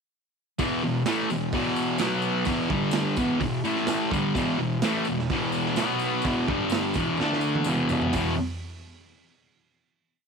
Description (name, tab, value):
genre	garage rock duo or trio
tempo	127 BPM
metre	4/4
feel	straight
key	unclear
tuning	A4 = 440 Hz
part	thick fuzz guitar	riff	0.6-8.3 s	E2 to D4	-24 LUFS	left 1 dB	distortion
part	crunchy breakbeat drum kit	drums	0.6-8.2 s	hi-hat, kick drum, snare drum, toms	-31 LUFS	right 4 dB	none
part	tambourine	percussion	0.6-8.3 s	none	-43 LUFS	left 13 dB	none
room	light reverb, small room ambience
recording	1960s-style stereo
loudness	-23 LUFS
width	side -5 dB against mid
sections	0.6-8.1 riff; 8.1-10.0 final chord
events	drum fill 7.2-8.1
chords	0.6 E5; 2.0 B5; 2.5 E5; 2.7 G5; 3.2 E5; 3.6 A5; 4.1 E5; 5.8 B5; 6.2 E5; 6.5 G5; 7.0 E5; 7.2 D5; 7.7 E5